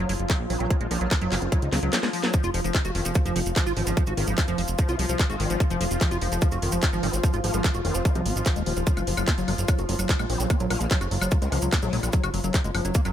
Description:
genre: psychedelic trance.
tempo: 147 BPM.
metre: 4/4.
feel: straight.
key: F phrygian.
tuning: A4 = 439 Hz.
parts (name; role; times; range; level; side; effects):
bubbling stepped-filter texture; sustained chords; 0.0-13.1 s; F3 to F4; -32 LUFS; left 2 dB; chorus, built-in reverb, vintage 12-bit sampler grit, sidechain pumping.
liquid acid bass; riff; 0.0-13.1 s; Eb3 to Gb4; -30 LUFS; moving between left 6 dB and right 6 dB; chorus, auto-pan, sidechain pumping, dub echo.
fat analog bass; bass; 0.0-13.1 s; Eb1 to Db2; -27 LUFS; equal; none.
garage drum kit; drums; 0.1-13.1 s; handclaps, hi-hat, snare drum, woodblock; -30 LUFS; equal; none.
electronic kick drum; drums; 0.3-13.0 s; none; -22 LUFS; equal; none.
vowel-sweep wobble bass; second line; 0.5-12.1 s; F3 to Eb4; -38 LUFS; left 3 dB; analog chorus, sidechain pumping, high-pass filter, digital delay.
maracas; percussion; 2.3-13.1 s; none; -36 LUFS; right 4 dB; none.
room: little or no reverb.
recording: none.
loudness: -22 LUFS.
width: side -10 dB against mid.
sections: 0.0-13.1 A section.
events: drum fill 1.7-2.3.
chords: 0.0 Gb5; 2.3 F5; 8.9 Gb5.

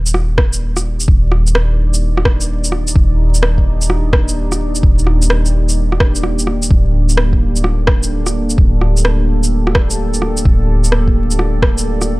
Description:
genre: future garage.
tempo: 128 BPM.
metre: 4/4.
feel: swing 66% on 16ths.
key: unclear.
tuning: A4 = 441 Hz.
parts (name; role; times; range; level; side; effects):
deep dark ambient pad; sustained chords; 0.2-12.2 s; Bb3 to D5; -22 LUFS; right 1 dB; chorus, built-in reverb, sidechain pumping.
soft 808-style bass; bass; 0.0-12.2 s; D1 to Eb1; -14 LUFS; equal; sidechain pumping.
electronic shaker and rim click; drums; 0.1-12.1 s; none; -18 LUFS; right 1 dB; overdrive.
electronic kick drum; drums; 0.4-11.8 s; none; -13 LUFS; equal; overdrive.
room: digital ambience.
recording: dry, gritty hardware recording, vinyl crackle.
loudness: -12 LUFS.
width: side -21 dB against mid.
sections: 0.0-12.2 A section.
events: none.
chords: 0.0 Ebmaj7; 6.7 Gmadd9/D.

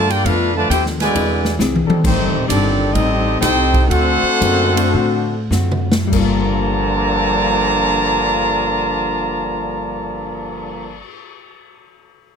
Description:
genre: jazz, big band swing.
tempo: 94-134 BPM.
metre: 4/4.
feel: swing 66% on 8ths.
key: G minor.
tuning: A4 = 436 Hz.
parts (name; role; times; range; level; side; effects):
clear trumpet section; melody; 0.0-11.0 s; A3 to Bb5; -18 LUFS; equal; plate reverb.
clear trombone section; second line; 0.0-11.0 s; G2 to G4; -21 LUFS; equal; none.
hollow-body jazz guitar; accompaniment; 0.0-11.1 s; A2 to A4; -25 LUFS; left 7 dB; none.
upright bass; bass; 0.0-11.0 s; Eb1 to A2; -21 LUFS; right 1 dB; none.
swinging big-band drum kit; drums; 0.1-11.1 s; crash cymbal, cymbal swell, hi-hat, kick drum, ride cymbal, snare drum, toms; -22 LUFS; equal; none.
clear trombone section; sustained chords; 0.2-2.5 s; F3 to A4; -26 LUFS; left 1 dB; none.
warm grand piano; accompaniment; 4.4-11.1 s; G2 to Bb4; -24 LUFS; left 8 dB; none.
room: light reverb.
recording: close, detailed microphones.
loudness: -14 LUFS.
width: side -6 dB against mid.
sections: 0.0-2.0 A section; 2.0-6.1 B section; 6.1-11.2 C section.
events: drum fill 1.6-2.0, 5.5-6.1; slowing down 2.0-6.1.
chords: 0.3 Bm7b5; 1.1 E7b13; 2.0 Am7b5; 3.9 D7; 6.1 Gm9.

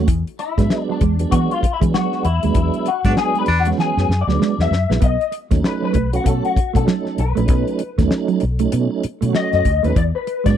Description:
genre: funk.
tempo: 97 BPM.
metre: 4/4.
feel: swing 60% on 16ths.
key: unclear.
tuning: A4 = 440 Hz.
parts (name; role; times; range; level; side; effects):
mellow electric guitar; riff; 0.0-10.5 s; E3 to B3; -23 LUFS; right 12 dB; tremolo.
mellow tonewheel organ; stabs; 0.0-10.6 s; F#3 to F#4; -23 LUFS; right 6 dB; chorus vibrato, fast rotary speaker.
vintage muted fingered electric bass; bass; 0.0-10.6 s; A#1 to E3; -19 LUFS; left 1 dB; none.
damped 70s drum kit; drums; 0.1-10.6 s; hi-hat, kick drum, snare drum; -19 LUFS; left 1 dB; none.
electric guitar at the edge of break-up; accompaniment; 0.4-10.6 s; D4 to E5; -22 LUFS; left 7 dB; wah, ensemble chorus.
clear baritone saxophone; second line; 3.1-3.7 s; D4; -22 LUFS; right 2 dB; none.
room: studio ambience.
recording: dry, close 1970s-style studio recording.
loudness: -16 LUFS.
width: side -10 dB against mid.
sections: 0.0-10.6 A section.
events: clean electric guitar solo 0.0-10.6; band accent 2.6-5.0; drum fill 3.8-5.0.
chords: 0.1 E9; 5.0 B9; 10.0 E9.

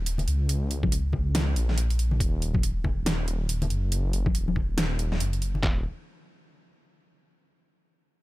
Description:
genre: deep dubstep.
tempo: 140 BPM.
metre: 4/4.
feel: swing 60% on 16ths, half-time.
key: Eb minor.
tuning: A4 = 440 Hz.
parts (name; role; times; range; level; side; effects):
dark detuned saw bass; bass; 0.0-5.8 s; Eb1 to Db2; -26 LUFS; equal; none.
dubstep drum kit; drums; 0.1-5.5 s; hi-hat, snare drum; -30 LUFS; equal; overdrive.
congas; percussion; 0.2-5.6 s; none; -32 LUFS; left 3 dB; none.
trip hop sampler-style drum kit; drums; 0.8-5.8 s; handclaps, kick drum, snare drum; -26 LUFS; equal; none.
room: little or no reverb.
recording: none.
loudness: -24 LUFS.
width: side -18 dB against mid.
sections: 0.0-5.6 A section; 5.6-7.3 B section.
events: none.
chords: none.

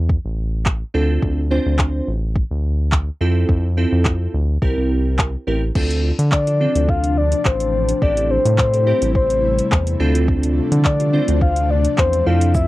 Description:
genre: dance-pop.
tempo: 106 BPM.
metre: 4/4.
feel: straight.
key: D minor.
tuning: A4 = 439 Hz.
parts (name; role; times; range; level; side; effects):
round analog bass; bass; 0.0-12.7 s; A1 to D3; -18 LUFS; equal; sidechain pumping.
smooth R&B drum kit; drums; 0.1-12.7 s; crash cymbal, handclaps, hi-hat, kick drum, shaker; -19 LUFS; equal; overdrive, cassette tape.
glassy digital keys; accompaniment; 0.9-12.7 s; C4 to C5; -22 LUFS; right 2 dB; chorus, sidechain pumping, cassette tape.
ethereal airy pad; sustained chords; 6.7-12.7 s; C3 to E4; -26 LUFS; left 1 dB; ensemble chorus, built-in reverb, sidechain pumping, cassette tape.
soft octave-layered synth lead; melody; 6.3-12.7 s; C5 to F5; -20 LUFS; left 3 dB; chorus, cassette tape.
room: light reverb.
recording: home recording on cassette.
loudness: -15 LUFS.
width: side -17 dB against mid.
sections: 0.0-5.8 A section; 5.8-12.7 B section.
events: none.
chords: 0.0 A5; 0.9 Dm7; 3.2 Fmaj7; 4.6 C7; 5.8 Dm7; 8.0 Am7; 10.0 Dm7.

